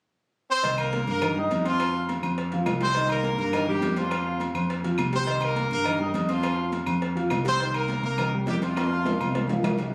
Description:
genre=latin, salsa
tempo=207 BPM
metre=4/4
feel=straight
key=C minor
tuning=A4 = 440 Hz
part: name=brilliant horn section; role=melody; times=0.5-9.5 s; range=F3 to Eb5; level=-29 LUFS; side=equal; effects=none
part: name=dark upright piano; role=accompaniment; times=0.6-9.9 s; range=Eb3 to F6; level=-33 LUFS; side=equal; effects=none
part: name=fingered electric bass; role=bass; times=0.6-9.9 s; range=C2 to G2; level=-31 LUFS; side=equal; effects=none
part: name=agogo bells and timbales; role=percussion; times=0.6-9.9 s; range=none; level=-34 LUFS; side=equal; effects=none
part: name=congas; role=percussion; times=0.6-9.9 s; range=none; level=-37 LUFS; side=equal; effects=none
part: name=cowbell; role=percussion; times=0.6-9.9 s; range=none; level=-41 LUFS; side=equal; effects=none
part: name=claves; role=percussion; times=0.8-9.8 s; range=none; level=-42 LUFS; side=equal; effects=none
room=moderate large studio reverb, RT60 1.1 s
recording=recorded on a phone in the room, club reverb, compression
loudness=-26 LUFS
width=mono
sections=0.6-9.9 A section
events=drum fill 8.8-9.9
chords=0.0 N.C.; 0.6 Cm7; 1.8 Fsus2; 3.0 Cm7; 4.1 Fsus2; 5.3 Cm7; 6.4 Fsus2; 7.6 Cm7; 8.8 Fsus2

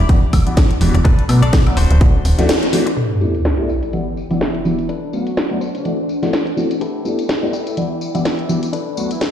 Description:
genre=filtered disco house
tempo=125 BPM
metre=4/4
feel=swing 57% on 16ths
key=G major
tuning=A4 = 439 Hz
part: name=direct-recorded clean electric guitar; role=riff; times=0.0-9.1 s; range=D4 to E5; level=-28 LUFS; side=left 5 dB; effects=spring reverb, sidechain pumping, low-pass filter
part: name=slap-like FM bass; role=bass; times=0.0-2.5 s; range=D1 to B2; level=-14 LUFS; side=equal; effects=tube saturation, sidechain pumping, low-pass filter
part: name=warm grand piano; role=accompaniment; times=0.1-9.1 s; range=E3 to F#4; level=-20 LUFS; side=left 1 dB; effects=phaser, sidechain pumping, low-pass filter
part: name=electronic kick drum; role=drums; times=0.1-2.1 s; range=none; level=-13 LUFS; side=equal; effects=none
part: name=house drum kit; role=drums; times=0.1-9.3 s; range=hi-hat, snare drum, tambourine, woodblock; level=-22 LUFS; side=equal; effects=sidechain pumping on hats, low-pass filter on hats, sidechain pumping on perc, low-pass filter on perc, low-pass filter on snare, low-pass filter on room
part: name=phased string machine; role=sustained chords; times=3.0-9.3 s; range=D4 to A5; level=-27 LUFS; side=equal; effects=ensemble chorus, phaser, vintage 12-bit sampler grit, sidechain pumping, low-pass filter
part: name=sub drop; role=sound effects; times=3.0-4.9 s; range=none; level=-21 LUFS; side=equal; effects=none
part: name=brilliant horn section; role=melody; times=3.8-9.3 s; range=D3 to A4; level=-32 LUFS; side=right 1 dB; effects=sidechain pumping, low-pass filter, tape echo
room=moderate lush hall reverb, RT60 1.9 s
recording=played on a big sound system in a bare room, stone room reverb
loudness=-14 LUFS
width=side -10 dB against mid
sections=0.0-3.0 A section; 3.0-9.3 B section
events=break 2.5-3.0; band accent 2.5; impact 3.0-4.9; filter sweep on drum 3.0-9.3; filter sweep 3.0-9.3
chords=0.0 Em7; 1.1 Bm7; 1.8 D7; 3.0 G69; 3.7 Em7; 4.9 Bm7; 5.6 D7; 6.8 G69; 7.5 Em7; 8.7 Bm7

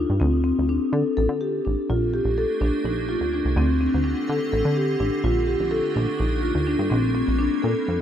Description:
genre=contemporary instrumental, chamber music in an uneven meter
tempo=250 BPM (eighths)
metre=7/8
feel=straight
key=Bb major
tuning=A4 = 440 Hz
part: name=marimba with soft mallets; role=arpeggios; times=0.0-8.0 s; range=C4 to A4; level=-23 LUFS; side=left 2 dB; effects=none
part: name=plucky analog bass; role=bass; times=0.0-8.0 s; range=A1 to D3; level=-24 LUFS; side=right 1 dB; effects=none
part: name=icy glass pad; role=sustained chords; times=2.2-8.0 s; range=D3 to G4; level=-30 LUFS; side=right 3 dB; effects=chorus, built-in reverb
room=moderate huge ambient reverb, RT60 8.0 s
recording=in a vast, echoing space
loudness=-20 LUFS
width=side -9 dB against mid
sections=0.0-8.0 A section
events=none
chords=0.2 D7(no3); 1.9 Bbmaj7; 3.6 D7sus4; 5.2 Bbmaj7; 6.9 Bb69

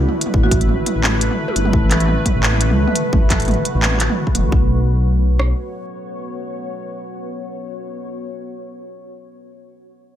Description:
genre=half-time drum and bass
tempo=172 BPM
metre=4/4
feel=swing 54% on 16ths, half-time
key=unclear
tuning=A4 = 439 Hz
part: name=deep dark ambient pad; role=sustained chords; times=0.0-8.1 s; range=A3 to C#5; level=-25 LUFS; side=equal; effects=chorus, built-in reverb, sidechain pumping
part: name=dark detuned saw bass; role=bass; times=0.0-5.5 s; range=E1 to C#2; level=-17 LUFS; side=equal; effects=none
part: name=industrial drum kit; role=drums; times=0.1-4.4 s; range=handclaps, hi-hat, toms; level=-20 LUFS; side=right 1 dB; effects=none
part: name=industrial drum kit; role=drums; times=0.3-5.5 s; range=kick drum, rim click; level=-18 LUFS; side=equal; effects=none
part: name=marimba with medium hard mallets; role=melody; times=0.4-0.9 s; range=F#4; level=-26 LUFS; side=right 2 dB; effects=tape echo
room=light reverb, digital ambience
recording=none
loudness=-14 LUFS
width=side -11 dB against mid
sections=0.0-4.5 A section; 4.5-7.3 B section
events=drop 0.0-4.5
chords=0.0 A5; 4.5 B5

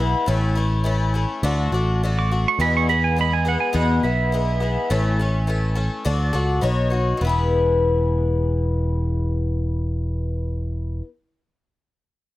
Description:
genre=rock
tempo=104 BPM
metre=4/4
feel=straight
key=E major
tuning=A4 = 435 Hz
part: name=pedal steel guitar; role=second line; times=0.0-5.7 s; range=E5 to D6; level=-24 LUFS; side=right 7 dB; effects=slapback echo
part: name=picked twelve-string acoustic guitar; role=accompaniment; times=0.0-11.1 s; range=E2 to C#5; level=-24 LUFS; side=left 3 dB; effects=none
part: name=picked electric bass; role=bass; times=0.0-11.0 s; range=E1 to E2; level=-21 LUFS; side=equal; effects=none
room=little or no reverb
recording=none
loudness=-19 LUFS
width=side -16 dB against mid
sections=0.0-7.2 A section; 7.2-9.5 B section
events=pedal steel guitar solo 0.0-7.2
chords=0.3 A; 1.4 D; 2.6 E; 4.9 A; 6.1 D; 6.6 Badd9; 7.2 E

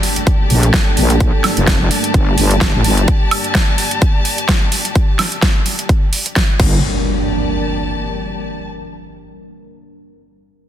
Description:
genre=bass house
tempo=128 BPM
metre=4/4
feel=swing 56% on 16ths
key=G minor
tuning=A4 = 439 Hz
part: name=deep dark ambient pad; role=sustained chords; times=0.0-6.8 s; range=G3 to Bb4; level=-24 LUFS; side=right 2 dB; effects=chorus, built-in reverb, sidechain pumping
part: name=big-room dance drum kit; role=drums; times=0.0-6.7 s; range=crash cymbal, hi-hat, snare drum, woodblock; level=-18 LUFS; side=right 1 dB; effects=overdrive
part: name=impact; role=sound effects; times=0.0-1.2, 6.6-8.5 s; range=none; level=-24 LUFS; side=equal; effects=none
part: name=warm studio string section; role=texture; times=0.0-8.7 s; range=G4 to A5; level=-23 LUFS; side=left 4 dB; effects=sidechain pumping
part: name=electronic kick drum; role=drums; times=0.3-6.7 s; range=none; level=-14 LUFS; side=equal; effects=overdrive
part: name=wobble bass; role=bass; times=0.5-3.1, 6.6-6.8 s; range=F1 to Bb1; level=-14 LUFS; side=equal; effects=chorus, overdrive, sidechain pumping
room=light reverb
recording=dense, heavily limited modern master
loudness=-12 LUFS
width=side -11 dB against mid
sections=0.0-6.8 A section; 6.8-8.7 B section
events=fade-out on string section 0.0-6.8; impact 0.0-1.2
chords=0.0 Gmadd9; 6.8 Gsus2

